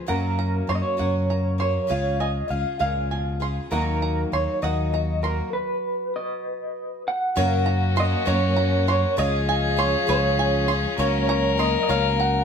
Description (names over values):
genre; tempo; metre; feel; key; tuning
folk; 66 BPM (dotted quarters); 6/8; straight; F# major; A4 = 440 Hz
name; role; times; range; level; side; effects
fingerpicked steel-string acoustic guitar; accompaniment; 0.0-7.4 s; F#2 to A#4; -34 LUFS; left 1 dB; none
picked twelve-string acoustic guitar; accompaniment; 0.0-12.4 s; F#2 to A#4; -30 LUFS; left 4 dB; none
bluegrass banjo; arpeggios; 0.0-12.4 s; C#5 to B#5; -30 LUFS; right 5 dB; none
electric guitar through a small old amp; melody; 0.1-12.4 s; A#4 to F#5; -26 LUFS; right 1 dB; tremolo
fingered electric bass; bass; 0.1-12.4 s; C#2 to F#2; -24 LUFS; equal; none
warm fiddle; second line; 7.4-12.4 s; F#4 to A#4; -26 LUFS; left 4 dB; none
rich studio string section; sustained chords; 7.4-12.4 s; E#3 to C#4; -33 LUFS; equal; none
room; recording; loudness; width
moderate stone room reverb, RT60 1.1 s; band playing live in one room; -20 LUFS; side -7 dB against mid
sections
0.0-7.4 A section; 7.4-12.4 B section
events
stop 5.5-7.4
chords
0.1 F#; 1.9 C#; 3.7 D#m; 5.5 N.C.; 7.4 F#; 9.2 C#; 11.0 F#/C#